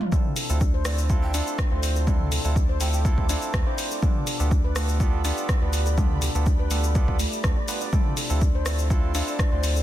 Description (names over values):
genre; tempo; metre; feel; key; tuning
afro house; 123 BPM; 4/4; straight; D dorian; A4 = 440 Hz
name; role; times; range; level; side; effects
handpan; arpeggios; 0.0-9.8 s; A3 to D5; -33 LUFS; left 3 dB; sidechain pumping, ping-pong delay
deep house drum kit; drums; 0.0-9.8 s; hi-hat, rim click, shaker, toms; -30 LUFS; left 1 dB; soft clipping on snare
ethereal airy pad; sustained chords; 0.8-9.8 s; G4 to D6; -38 LUFS; equal; ensemble chorus, built-in reverb, tremolo, sidechain pumping
barky tine electric piano; stabs; 0.1-9.8 s; B3 to D5; -33 LUFS; right 5 dB; overdrive, sidechain pumping, low-pass filter, ping-pong delay
electronic kick drum; drums; 0.1-9.5 s; none; -23 LUFS; equal; none
round analog bass; bass; 0.5-9.8 s; D2; -24 LUFS; equal; sidechain pumping
breathy bansuri; melody; 0.9-3.0, 8.7-9.8 s; D5 to G5; -38 LUFS; left 1 dB; ping-pong delay
room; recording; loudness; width
little or no reverb; dense, heavily limited modern master; -21 LUFS; side -13 dB against mid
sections
0.1-9.8 A section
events
drop 0.1-9.8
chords
0.1 Dm7; 4.0 G7/D; 7.9 Dm7